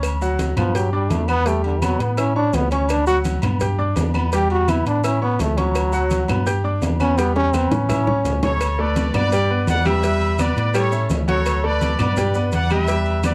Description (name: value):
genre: latin, salsa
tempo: 168 BPM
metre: 4/4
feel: straight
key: D major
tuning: A4 = 440 Hz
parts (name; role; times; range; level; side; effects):
- bright baby grand piano; accompaniment; 0.0-13.3 s; F#3 to G6; -27 LUFS; equal; none
- bell-like tine electric piano; bass; 0.0-13.3 s; D2 to A2; -24 LUFS; equal; none
- agogo bells and timbales; percussion; 0.0-13.3 s; none; -33 LUFS; equal; none
- claves; percussion; 0.0-13.3 s; none; -37 LUFS; equal; none
- congas; percussion; 0.0-13.3 s; none; -29 LUFS; equal; none
- cowbell and bongos; percussion; 0.0-13.3 s; none; -30 LUFS; equal; none
- maracas; percussion; 0.0-13.3 s; none; -43 LUFS; equal; none
- bright trombone; melody; 0.6-8.5 s; D3 to G4; -23 LUFS; equal; none
- bright trumpet section; melody; 8.4-13.3 s; A4 to F#5; -25 LUFS; equal; slapback echo
room: little or no reverb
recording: dry, close 1970s-style studio recording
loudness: -20 LUFS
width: mono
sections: 0.0-8.6 A section; 8.6-13.3 B section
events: trombone solo 0.0-8.6; drum fill 7.2-8.6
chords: 0.0 Dmaj7; 0.8 G; 1.5 Em; 2.2 A; 2.9 Dmaj7; 3.6 G; 4.3 Em; 5.0 A; 5.8 Dmaj7; 6.5 G; 7.2 Em; 7.9 A; 8.6 D5; 9.3 G; 10.0 Em7; 10.7 A7; 11.5 D; 12.2 G